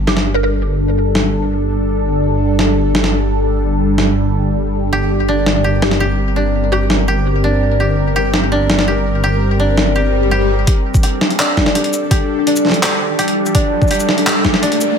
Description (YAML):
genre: half-time drum and bass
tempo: 167 BPM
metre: 4/4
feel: half-time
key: G minor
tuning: A4 = 440 Hz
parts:
  - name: bowed-like drone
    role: sustained chords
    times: 0.0-15.0 s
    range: G3 to Bb4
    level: -18 LUFS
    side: left 1 dB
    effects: built-in reverb, phaser, sidechain pumping
  - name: koto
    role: arpeggios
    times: 0.0-0.9, 4.9-15.0 s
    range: D4 to G4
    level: -19 LUFS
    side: right 1 dB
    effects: low-pass filter, ping-pong delay
  - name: dark detuned saw bass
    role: bass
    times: 0.0-10.7 s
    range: G1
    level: -17 LUFS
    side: equal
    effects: none
  - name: sub drop, swell and riser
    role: sound effects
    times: 0.0-0.6, 10.1-15.0 s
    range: none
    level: -24 LUFS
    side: left 2 dB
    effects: none
  - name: mallet-like synth pluck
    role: melody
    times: 0.1-0.5, 5.8-7.2 s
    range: G4 to Bb4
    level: -23 LUFS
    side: equal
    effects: ensemble chorus, tape echo
  - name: boom bap sampler-style drum kit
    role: drums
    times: 0.1-14.9 s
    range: handclaps, hi-hat, shaker, snare drum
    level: -17 LUFS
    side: equal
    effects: none
  - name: electronic kick drum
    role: drums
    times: 10.7-14.5 s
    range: none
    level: -15 LUFS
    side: equal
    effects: overdrive
room: moderate lush hall reverb, RT60 1.9 s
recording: none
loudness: -12 LUFS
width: side -7 dB against mid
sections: 0.0-10.7 A section; 10.7-15.0 B section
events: impact 0.0-0.6; filter sweep on synth drone 0.0-10.7; swell 10.1-10.7; build-up 10.7-15.0; riser 10.7-15.0; filter sweep on koto 10.7-15.0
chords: 0.0 Gmadd9; 10.7 Gsus2